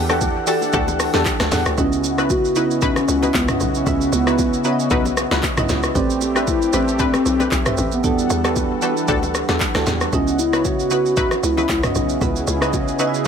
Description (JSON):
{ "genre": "amapiano", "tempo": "115 BPM", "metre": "4/4", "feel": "swing 55% on 16ths", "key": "C# minor", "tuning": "A4 = 441 Hz", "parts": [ { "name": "soft electric-piano-like synth keys", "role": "accompaniment", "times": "0.0-13.3 s", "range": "C#3 to A5", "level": "-24 LUFS", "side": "right 4 dB", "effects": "chorus" }, { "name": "warm analog pad", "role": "sustained chords", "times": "0.0-13.3 s", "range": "C#3 to F#5", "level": "-26 LUFS", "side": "left 2 dB", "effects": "chorus, sidechain pumping" }, { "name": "hollow log drum bass", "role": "bass", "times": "0.0-12.9 s", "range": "A1 to E2", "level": "-25 LUFS", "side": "equal", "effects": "none" }, { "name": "punchy chord stab", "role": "stabs", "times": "0.1-13.3 s", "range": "C4 to B4", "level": "-25 LUFS", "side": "left 2 dB", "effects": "chorus, ping-pong delay" }, { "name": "deep house drum kit", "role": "drums", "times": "0.1-13.3 s", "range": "handclaps, hi-hat, kick drum, rim click, shaker, snare drum, toms", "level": "-22 LUFS", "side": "equal", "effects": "none" }, { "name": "bongos and congas", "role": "percussion", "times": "0.1-12.9 s", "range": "none", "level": "-31 LUFS", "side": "left 3 dB", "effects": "none" }, { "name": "hollow clarinet-like synth lead", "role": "melody", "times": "1.8-12.7 s", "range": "B3 to F#4", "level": "-21 LUFS", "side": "equal", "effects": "chorus, ping-pong delay" } ], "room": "light reverb", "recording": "none", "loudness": "-16 LUFS", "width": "side -7 dB against mid", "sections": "0.0-1.8 A section; 1.8-13.3 B section", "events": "drop 0.0-1.8", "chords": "0.0 Em11; 1.8 C#m11; 6.0 Am11; 8.0 Em11; 10.1 C#m11", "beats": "0.21 0.74 1.26 | 1.78 2.30 2.82 3.34 | 3.87 4.39 4.91 5.43 | 5.95 6.47 7.00 7.52 | 8.04 8.56 9.08 9.61 | 10.13 10.65 11.17 11.69 | 12.21 12.74 13.26" }